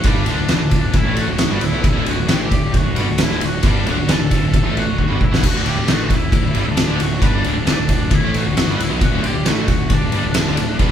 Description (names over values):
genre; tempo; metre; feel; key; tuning
quiet-loud alternative rock; 134 BPM; 4/4; straight; D major; A4 = 440 Hz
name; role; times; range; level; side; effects
octave-fuzz lead guitar; melody; 0.0-10.9 s; D4 to A5; -26 LUFS; equal; distortion
overdriven electric guitar; riff; 0.0-10.9 s; D2 to B3; -27 LUFS; right 3 dB; none
fuzz picked electric bass; bass; 0.0-10.9 s; D1 to B1; -22 LUFS; equal; overdrive
oversized low-tuned drum kit; drums; 0.0-10.9 s; crash cymbal, kick drum, ride cymbal, snare drum; -17 LUFS; equal; none
crunchy overdriven guitar; riff; 0.1-10.9 s; D2 to B3; -28 LUFS; right 1 dB; none
tight distorted guitar; riff; 0.1-10.9 s; D2 to B3; -26 LUFS; left 2 dB; distortion
room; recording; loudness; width
light reverb; band playing live in one room; -15 LUFS; side -9 dB against mid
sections
0.0-10.9 A section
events
drum fill 5.0-5.4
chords
0.0 D